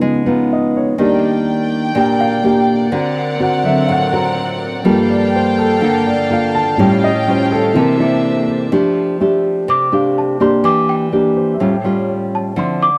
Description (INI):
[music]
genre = bossa nova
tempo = 124 BPM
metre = 4/4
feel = straight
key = D minor, F major from 8.7 s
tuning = A4 = 439 Hz
[part]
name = nylon-string guitar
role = accompaniment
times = 0.0-13.0 s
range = A2 to Bb4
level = -17 LUFS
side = equal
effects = none
[part]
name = warm grand piano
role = accompaniment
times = 0.0-12.6 s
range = G2 to A5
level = -20 LUFS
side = equal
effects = none
[part]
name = warm chamber string section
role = sustained chords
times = 1.0-8.7 s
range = Bb3 to A5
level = -24 LUFS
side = equal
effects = none
[part]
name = worn celesta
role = melody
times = 9.7-13.0 s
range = F5 to D6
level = -20 LUFS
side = equal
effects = none
[sound]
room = light reverb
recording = none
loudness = -15 LUFS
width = mono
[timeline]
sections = 0.0-8.7 A section; 8.7-13.0 A section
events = grand piano solo 0.0-8.7; celesta solo 8.7-13.0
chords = 0.0 C#9; 1.0 Ebmaj7; 2.9 D7b13; 4.9 Gm9; 6.8 Aaug7; 7.8 C13; 8.7 F69; 10.6 Em7b5; 11.6 A7b13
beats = 0.02 0.50 | 0.99 1.47 1.95 2.44 | 2.92 3.40 3.89 4.37 | 4.86 5.34 5.82 6.30 | 6.79 7.27 7.75 8.23 | 8.72 9.20 9.68 10.16 | 10.65 11.13 11.61 12.10 | 12.58